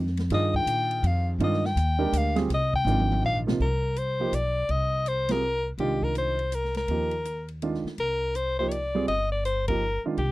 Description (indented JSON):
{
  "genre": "modal jazz",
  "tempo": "164 BPM",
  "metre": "3/4",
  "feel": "swing 64% on 8ths",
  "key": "C minor",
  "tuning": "A4 = 440 Hz",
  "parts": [
    { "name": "upright bass", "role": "bass", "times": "0.0-10.3 s", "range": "G1 to Bb2", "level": "-28 LUFS", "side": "equal", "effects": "none" },
    { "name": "open jazz drum kit", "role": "drums", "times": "0.1-10.3 s", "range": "crash cymbal, hi-hat, kick drum, ride cymbal, snare drum, toms", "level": "-34 LUFS", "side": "equal", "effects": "none" },
    { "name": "warm soprano saxophone", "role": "melody", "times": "0.3-10.3 s", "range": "G4 to G5", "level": "-27 LUFS", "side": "left 2 dB", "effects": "none" },
    { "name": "warm baby grand piano", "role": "accompaniment", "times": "0.3-10.2 s", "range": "C3 to Bb4", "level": "-29 LUFS", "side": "right 4 dB", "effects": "none" }
  ],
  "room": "little or no reverb",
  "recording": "dry, close 1970s-style studio recording",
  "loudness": "-24 LUFS",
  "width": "side -18 dB against mid",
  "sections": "0.0-3.6 A section; 3.6-10.3 B section",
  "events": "soprano saxophone solo 0.0-3.6; drum fill 2.9-3.6; band accent 5.2, 9.6",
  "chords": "0.0 Cm11"
}